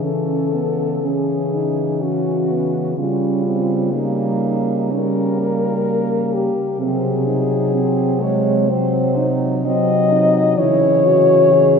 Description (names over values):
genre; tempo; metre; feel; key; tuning
classical, lyrical piece for horn quartet; 63 BPM; 4/4; rubato; unclear; A4 = 438 Hz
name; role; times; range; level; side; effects
mellow French horn; melody; 0.0-11.8 s; D#4 to D#5; -18 LUFS; left 4 dB; none
dark French horn; second line; 0.0-11.8 s; G#3 to G#4; -22 LUFS; right 7 dB; none
mellow French horn; accompaniment; 0.0-11.8 s; E3 to G3; -23 LUFS; left 1 dB; none
mellow French horn; bass; 0.0-11.8 s; B#2 to C#3; -23 LUFS; equal; none
room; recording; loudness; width
wet cathedral reverb, RT60 5.5 s; heard from further back in the room; -15 LUFS; side -6 dB against mid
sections
0.0-11.8 A section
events
none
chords
0.0 C#m; 3.0 D#7/C#; 6.8 G#7/B#; 10.6 C#m